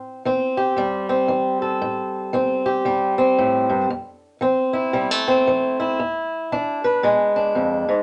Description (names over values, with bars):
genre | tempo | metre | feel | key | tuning
blues | 115 BPM | 4/4 | swing 62% on 8ths | A minor | A4 = 438 Hz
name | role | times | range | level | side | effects
fingerpicked swing-style acoustic guitar | solo | 0.0-8.0 s | E2 to B4 | -21 LUFS | equal | none
room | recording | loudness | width
moderate studio reverb, RT60 0.6 s | nothing above 10.8 kHz | -21 LUFS | mono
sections
0.0-8.0 A section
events
none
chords
0.0 Am7; 3.9 Fmaj7; 6.0 E7